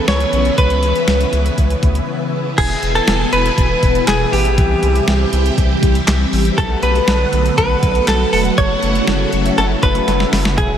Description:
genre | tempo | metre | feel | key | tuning
synth-pop | 120 BPM | 4/4 | straight | unclear | A4 = 443 Hz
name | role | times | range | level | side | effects
direct-recorded clean electric guitar | melody | 0.0-10.8 s | G4 to C#5 | -18 LUFS | equal | lush chorus, tape echo
phased string machine | sustained chords | 0.0-10.8 s | B2 to G#5 | -19 LUFS | equal | ensemble chorus, phaser
round analog bass | bass | 0.1-10.8 s | E1 to D2 | -18 LUFS | equal | none
clean 12-bit digital drum machine | drums | 0.1-10.7 s | crash cymbal, handclaps, hi-hat, kick drum, snare drum | -19 LUFS | equal | none
room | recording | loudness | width
moderate huge ambient reverb, RT60 7.1 s | dreamy mix soaked in reverb | -13 LUFS | side -9 dB against mid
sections
0.0-2.6 A section; 2.6-10.8 B section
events
break 2.1-2.6; drum fill 10.1-10.6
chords
0.0 C#m7; 2.6 E; 4.6 C; 6.6 Bm7; 8.6 F#m7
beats
0.08 | 0.58 1.08 1.58 2.08 | 2.58 3.08 3.58 4.08 | 4.58 5.08 5.58 6.08 | 6.58 7.08 7.58 8.08 | 8.58 9.08 9.58 10.08 | 10.58

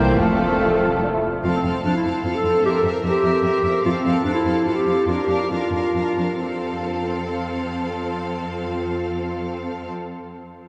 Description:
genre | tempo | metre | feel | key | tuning
quick classical-period movement for symphony orchestra | 125-152 BPM | 3/4 | rubato | F major | A4 = 440 Hz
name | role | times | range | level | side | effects
rich studio violin section | melody | 0.0-9.9 s | A4 to F5 | -34 LUFS | equal | none
large flute ensemble | second line | 0.0-1.2 s | G5 to A5 | -37 LUFS | equal | none
mellow oboe | second line | 0.0-1.2 s | F5 to G5 | -34 LUFS | equal | none
rich studio violin section | second line | 0.0-9.9 s | A3 to Bb4 | -32 LUFS | equal | none
warm clarinet | second line | 0.0-9.9 s | C4 to Bb4 | -25 LUFS | equal | none
mellow bassoon | accompaniment | 0.0-1.3 s | Bb3 to F4 | -32 LUFS | equal | none
warm studio viola section | accompaniment | 0.0-9.9 s | E3 to D4 | -30 LUFS | equal | none
mellow French horn section | sustained chords | 0.0-1.2 s | A3 to F4 | -33 LUFS | equal | none
rich studio cello section | bass | 0.0-9.9 s | C2 to F2 | -30 LUFS | equal | none
warm studio double bass section | bass | 0.0-1.2 s | F1 to C2 | -32 LUFS | equal | none
room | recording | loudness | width
wet cathedral reverb, RT60 4.5 s | none | -22 LUFS | mono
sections
0.0-1.4 A section; 1.4-6.4 B section; 6.4-9.2 C section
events
slowing down 3.2-6.4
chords
0.2 F; 5.1 Bb/F; 6.4 F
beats
| 0.21 0.62 1.03 | 1.45 1.85 2.25 | 2.64 3.04 3.44 | 3.84 4.25 4.65 | 5.07 5.50 5.95 | 6.42 6.88 7.33 | 7.79 8.24 8.69

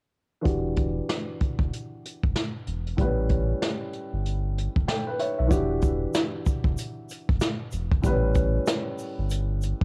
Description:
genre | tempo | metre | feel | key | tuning
hip hop, boom-bap hip-hop | 95 BPM | 4/4 | swing 62% on 16ths | E dorian | A4 = 440 Hz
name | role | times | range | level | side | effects
dark baby grand piano | accompaniment | 0.4-9.8 s | A2 to G5 | -32 LUFS | equal | high-pass filter, low-pass filter, cassette tape
sub bass with octave | bass | 0.5-9.8 s | E1 to B1 | -30 LUFS | equal | none
jazz brush drum kit | drums | 0.5-9.8 s | hi-hat, kick drum, snare drum | -29 LUFS | equal | cassette tape
egg shaker | percussion | 5.5-9.8 s | none | -48 LUFS | equal | none
room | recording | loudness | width
light reverb, small room ambience | home recording on cassette | -27 LUFS | mono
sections
0.5-5.5 A section; 5.5-9.8 B section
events
filter sweep on grand piano 0.5-5.5; grand piano fill 4.6-5.5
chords
0.5 Em9; 3.0 A9; 5.5 Em9; 8.0 A9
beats
| 0.46 1.09 1.72 2.35 | 2.98 3.61 4.25 4.88 | 5.51 6.14 6.77 7.40 | 8.03 8.67 9.30

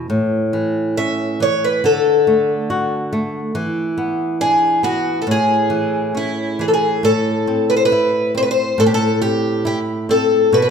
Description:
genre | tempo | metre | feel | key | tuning
fado-style ballad | 69 BPM | 2/4 | rubato | A major, A minor from 7.0 s | A4 = 440 Hz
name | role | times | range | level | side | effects
flamenco guitar | accompaniment | 0.0-10.7 s | A2 to F#4 | -19 LUFS | right 1 dB | none
picked twelve-string acoustic guitar | melody | 1.0-10.7 s | E4 to E5 | -16 LUFS | left 1 dB | none
room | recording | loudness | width
wet recital hall reverb, RT60 1.7 s | none | -15 LUFS | side -6 dB against mid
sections
0.0-7.0 A section; 7.0-10.7 B section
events
none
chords
0.1 A; 1.8 D; 3.5 E5; 5.3 Amaj7; 7.0 Am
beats
| 0.08 0.96 | 1.83 2.69 | 3.54 4.40 | 5.26 6.15 | 7.04 7.92 | 8.78 9.65 | 10.52

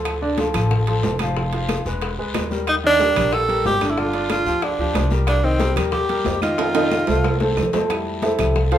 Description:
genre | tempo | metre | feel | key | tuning
Afro-Cuban jazz | 184 BPM | 4/4 | straight | unclear | A4 = 439 Hz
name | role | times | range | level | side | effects
warm grand piano | accompaniment | 0.0-8.8 s | D3 to F5 | -23 LUFS | equal | none
upright bass | bass | 0.0-8.8 s | E1 to F2 | -24 LUFS | left 1 dB | none
bongos | percussion | 0.1-8.8 s | none | -31 LUFS | left 5 dB | none
claves | percussion | 0.1-8.6 s | none | -35 LUFS | right 5 dB | none
congas | percussion | 0.1-8.8 s | none | -30 LUFS | left 2 dB | none
guiro | percussion | 0.1-8.8 s | none | -36 LUFS | left 5 dB | none
timbales | percussion | 0.1-8.8 s | none | -28 LUFS | right 5 dB | none
clear tenor saxophone | melody | 2.7-7.5 s | C4 to A4 | -20 LUFS | right 2 dB | none
room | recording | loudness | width
wet club reverb, RT60 0.7 s | minimal, uncompressed stereo recording | -17 LUFS | side -11 dB against mid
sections
0.0-7.9 A section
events
drum fill 6.6-7.9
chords
0.1 Dm; 1.4 Fm; 2.0 E; 2.7 Ebmaj7; 4.0 G5; 5.3 Cm7; 6.6 F7; 7.9 Fmaj7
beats
| 0.06 0.38 0.71 1.04 | 1.36 1.69 2.02 2.34 | 2.67 3.00 3.32 3.65 | 3.98 4.30 4.63 4.96 | 5.28 5.61 5.94 6.26 | 6.59 6.92 7.25 7.57 | 7.90 8.23 8.56

